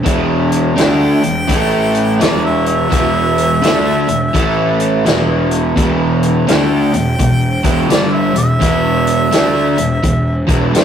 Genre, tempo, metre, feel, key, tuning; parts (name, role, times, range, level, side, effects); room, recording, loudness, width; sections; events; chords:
blues rock power trio and southern rock; 84 BPM; 4/4; swing 64% on 8ths; E minor; A4 = 435 Hz
crunchy overdriven guitar; riff; 0.0-10.8 s; E2 to D4; -14 LUFS; equal; spring reverb
fuzz fingered electric bass; bass; 0.0-10.8 s; E1 to D2; -19 LUFS; equal; overdrive
vintage drum kit; drums; 0.1-10.8 s; hi-hat, kick drum, snare drum; -17 LUFS; equal
bright harmonica; melody; 0.8-10.5 s; D5 to G5; -18 LUFS; equal; overdrive
wet studio reverb, RT60 0.6 s; rough rehearsal-room recording, tube saturation; -11 LUFS; side -8 dB against mid
0.0-10.8 A section
0.0 Em; 1.5 A5; 2.2 E5; 4.3 A5; 5.1 Em